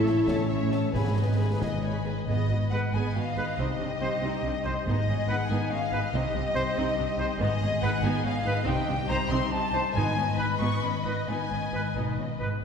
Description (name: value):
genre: cinematic, heroic adventure film score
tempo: 93 BPM (dotted quarters)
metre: 6/8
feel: straight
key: G# dorian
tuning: A4 = 440 Hz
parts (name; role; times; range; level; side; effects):
- warm symphonic violin section; melody; 0.0-11.9 s; A4 to C#6; -35 LUFS; left 4 dB; none
- rich symphonic violin section; second line; 0.0-12.6 s; G4 to B5; -37 LUFS; left 3 dB; none
- warm symphonic viola section; accompaniment; 0.0-12.6 s; B3 to E5; -35 LUFS; right 1 dB; none
- dark French horn section; sustained chords; 0.0-12.5 s; D#3 to E4; -32 LUFS; left 1 dB; none
- concert harp; arpeggios; 0.0-12.6 s; G#2 to D#5; -34 LUFS; left 6 dB; none
- rich symphonic double bass section; bass; 0.0-12.6 s; G#1 to C2; -33 LUFS; right 2 dB; none
- warm symphonic cello section; bass; 0.0-12.6 s; G#2 to C3; -34 LUFS; right 2 dB; none
- concert snare drum and concert bass drum; drums; 0.1-1.8 s; none; -36 LUFS; equal; none
- timpani; percussion; 0.9-10.6 s; G#2; -33 LUFS; right 1 dB; none
- silver concert flute; second line; 2.3-12.6 s; Eb5 to C#6; -34 LUFS; left 1 dB; none
- bright trumpet section; stabs; 2.7-12.6 s; B4 to C5; -35 LUFS; equal; none
room: wet scoring stage reverb, RT60 2.0 s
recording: heard from further back in the room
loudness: -25 LUFS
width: side -6 dB against mid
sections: 0.0-2.3 A section; 2.3-12.6 B section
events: none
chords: 0.0 A; 0.9 G#m; 3.6 Cm; 4.9 G#m; 6.1 Cm; 7.4 G#m; 8.7 Cm; 9.9 G#m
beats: 0.28 | 0.94 1.61 | 2.28 2.93 | 3.57 4.22 | 4.86 5.50 | 6.13 6.76 | 7.40 8.03 | 8.66 9.29 | 9.94 10.59 | 11.27 11.96 | 12.62